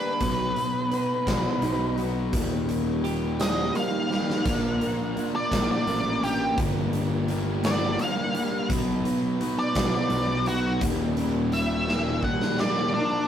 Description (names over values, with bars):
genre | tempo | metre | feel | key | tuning
quiet-loud alternative rock | 57 BPM (dotted quarters) | 6/8 | straight | unclear | A4 = 443 Hz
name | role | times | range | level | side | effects
octave-fuzz lead guitar | melody | 0.0-13.3 s | D4 to F#5 | -28 LUFS | equal | distortion
twelve-string electric guitar | arpeggios | 0.0-4.5 s | Eb2 to B4 | -31 LUFS | right 6 dB | phaser
fuzz guitar | riff | 0.0-13.3 s | Eb2 to B4 | -29 LUFS | left 4 dB | distortion
fuzz picked electric bass | bass | 0.2-12.2 s | Eb1 to B1 | -30 LUFS | equal | overdrive
huge arena drum kit | drums | 0.2-12.8 s | hi-hat, kick drum, snare drum, splash cymbal | -30 LUFS | equal | none
thick fuzz guitar | riff | 4.5-12.9 s | Eb2 to B4 | -30 LUFS | right 5 dB | distortion
room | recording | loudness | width
moderate stone room reverb, RT60 1.0 s | rough rehearsal-room recording, warm saturation | -23 LUFS | side -9 dB against mid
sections
0.0-12.9 A section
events
lead electric guitar solo 0.0-12.9; drum fill 4.1-4.5, 11.9-12.9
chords
0.2 B; 2.3 Eb; 4.5 Bb; 6.6 Gm; 8.7 B; 10.8 Eb